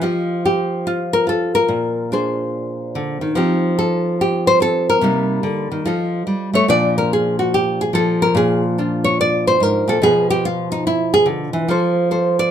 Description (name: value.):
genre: solo jazz.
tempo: 144 BPM.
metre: 4/4.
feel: swing 66% on 8ths.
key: F mixolydian.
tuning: A4 = 439 Hz.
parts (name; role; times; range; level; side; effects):
nylon-string guitar; solo; 0.0-12.5 s; Ab2 to Eb5; -15 LUFS; equal; none.
room: light reverb.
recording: minimal, uncompressed stereo recording.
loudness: -15 LUFS.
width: side -9 dB against mid.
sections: 0.0-12.5 A section.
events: nylon-string guitar solo 0.0-12.5.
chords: 0.0 Fsus2; 1.7 Bb9; 3.3 F9; 5.0 Cm7; 5.8 F9; 6.7 Bb7; 10.0 Bdim; 11.7 F.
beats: | 0.01 0.43 0.84 1.26 | 1.68 2.09 2.51 2.93 | 3.34 3.76 4.18 4.59 | 5.01 5.43 5.84 6.26 | 6.68 7.09 7.51 7.93 | 8.34 8.76 9.17 9.59 | 10.01 10.42 10.84 11.25 | 11.67 12.09 12.50.